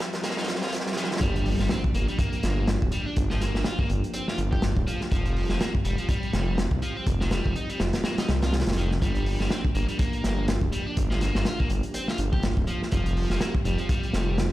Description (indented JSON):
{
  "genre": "breakbeat, breaks",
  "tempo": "123 BPM",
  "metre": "4/4",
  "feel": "swing 56% on 16ths",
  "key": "G minor",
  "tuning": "A4 = 440 Hz",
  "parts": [
    { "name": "mellow tonewheel organ", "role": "sustained chords", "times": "0.0-14.5 s", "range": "F3 to G4", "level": "-34 LUFS", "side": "right 1 dB", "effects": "chorus vibrato, lush chorus, sidechain pumping" },
    { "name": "crunchy breakbeat drum kit", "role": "drums", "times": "0.0-14.5 s", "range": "hi-hat, kick drum, snare drum", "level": "-27 LUFS", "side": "equal", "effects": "high-pass filter on kick, high-pass filter on hats, high-pass filter on snare, high-pass filter on room" },
    { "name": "riser and impact", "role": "sound effects", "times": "0.0-3.2 s", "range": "none", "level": "-34 LUFS", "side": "equal", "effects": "none" },
    { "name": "biting overdriven guitar", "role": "riff", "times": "0.2-14.4 s", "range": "Eb3 to G4", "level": "-33 LUFS", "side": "left 1 dB", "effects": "dub echo" },
    { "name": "detuned saw bass", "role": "bass", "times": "1.2-14.5 s", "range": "D1 to C2", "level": "-26 LUFS", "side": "equal", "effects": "none" }
  ],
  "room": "light reverb",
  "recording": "played on a big sound system in a bare room, large studio reverb",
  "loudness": "-23 LUFS",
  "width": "side -16 dB against mid",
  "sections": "0.0-1.2 A section; 1.2-14.5 B section",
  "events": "build-up 0.0-1.2; drum fill 0.0-1.2; riser 0.0-1.2; drop 1.2-14.5; impact 1.2-3.2",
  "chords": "0.0 Fsus2; 1.2 Gm7; 5.1 Fsus2; 9.0 Gm7; 12.9 Fsus2",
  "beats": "0.24 0.73 | 1.22 1.70 2.19 2.68 | 3.17 3.65 4.14 4.63 | 5.12 5.61 6.09 6.58 | 7.07 7.56 8.04 8.53 | 9.02 9.51 9.99 10.48 | 10.97 11.46 11.95 12.43 | 12.92 13.41 13.90 14.38"
}